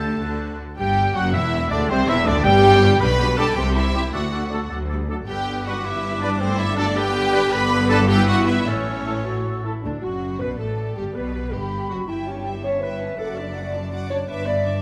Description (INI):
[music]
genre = quick classical-period movement for symphony orchestra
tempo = 107 BPM (dotted quarters)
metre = 6/8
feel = rubato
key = G major, D major from 7.5 s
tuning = A4 = 441 Hz
[part]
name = rich studio violin section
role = melody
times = 0.0-14.8 s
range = D4 to D6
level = -31 LUFS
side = equal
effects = none
[part]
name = clear clarinet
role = second line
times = 0.0-14.8 s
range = C4 to D5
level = -30 LUFS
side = equal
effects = none
[part]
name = clear oboe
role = second line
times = 0.0-9.6 s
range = G4 to G5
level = -32 LUFS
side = equal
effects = none
[part]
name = rich studio violin section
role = second line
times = 0.0-14.8 s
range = C4 to F#5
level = -32 LUFS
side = equal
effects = none
[part]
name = small flute group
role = second line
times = 0.0-14.8 s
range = C5 to G6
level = -33 LUFS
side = equal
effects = none
[part]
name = dark studio viola section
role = accompaniment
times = 0.0-14.8 s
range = C3 to F#4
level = -30 LUFS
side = equal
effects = none
[part]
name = mellow French horn section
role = sustained chords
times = 0.0-14.8 s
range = C3 to D5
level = -31 LUFS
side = equal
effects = none
[part]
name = warm trumpet section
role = stabs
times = 0.0-9.7 s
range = G4 to G5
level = -29 LUFS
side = equal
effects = none
[part]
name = rich studio cello section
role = bass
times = 0.0-14.8 s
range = C2 to D3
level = -30 LUFS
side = equal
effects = none
[part]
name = warm studio double bass section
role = bass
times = 0.0-14.8 s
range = E1 to D2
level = -28 LUFS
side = equal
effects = none
[sound]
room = moderate scoring stage reverb, RT60 1.6 s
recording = none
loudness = -21 LUFS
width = mono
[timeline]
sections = 0.8-9.8 A section; 9.8-14.8 B section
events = none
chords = 0.2 D; 0.8 G5; 1.9 Cadd9; 2.5 N.C.; 3.0 G/B; 3.6 C; 4.1 D; 5.3 G; 6.4 D5/G; 7.0 G; 8.1 Em/G; 8.7 A; 9.8 D; 11.0 G; 12.1 A7/G; 13.2 D/F#; 14.3 Em7/G